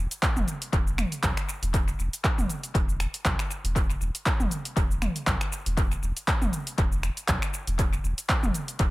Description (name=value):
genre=afro house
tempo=119 BPM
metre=4/4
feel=swing 55% on 16ths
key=unclear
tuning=A4 = 440 Hz
part: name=warm sub bass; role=bass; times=0.0-8.9 s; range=E1 to B1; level=-29 LUFS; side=equal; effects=sidechain pumping
part: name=deep house drum kit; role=drums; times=0.1-8.9 s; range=finger snaps, handclaps, hi-hat, shaker, toms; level=-29 LUFS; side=equal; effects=overdrive, small room ambience, analog delay
part: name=electronic kick drum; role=drums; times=0.2-8.9 s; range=none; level=-26 LUFS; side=equal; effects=overdrive, small room ambience
room=little or no reverb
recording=echo-heavy mix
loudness=-24 LUFS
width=side -19 dB against mid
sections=0.0-8.9 A section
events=none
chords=none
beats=0.23 0.73 1.23 | 1.74 2.24 2.75 3.25 | 3.75 4.26 4.76 5.27 | 5.77 6.28 6.78 7.28 | 7.79 8.29 8.80